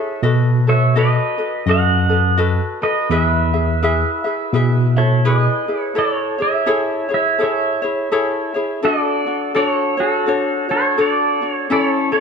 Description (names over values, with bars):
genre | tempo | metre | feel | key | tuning
Hawaiian | 84 BPM | 4/4 | swing 60% on 8ths | E major, A major from 6.0 s | A4 = 436 Hz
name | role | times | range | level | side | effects
pedal steel guitar | melody | 0.0-12.2 s | F#4 to F#5 | -19 LUFS | right 2 dB | none
ukulele | accompaniment | 0.0-12.2 s | C#4 to E5 | -20 LUFS | left 3 dB | none
bright tine electric piano | bass | 0.2-5.5 s | E2 to B2 | -15 LUFS | equal | fast stereo tremolo
room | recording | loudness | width
moderate echo chamber reverb, RT60 2.0 s | nothing above 10.8 kHz | -15 LUFS | side -6 dB against mid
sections
0.0-6.0 A section; 6.0-12.2 B section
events
none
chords
0.2 B7; 3.1 E; 6.0 Amaj7; 8.8 Dmaj7; 11.7 A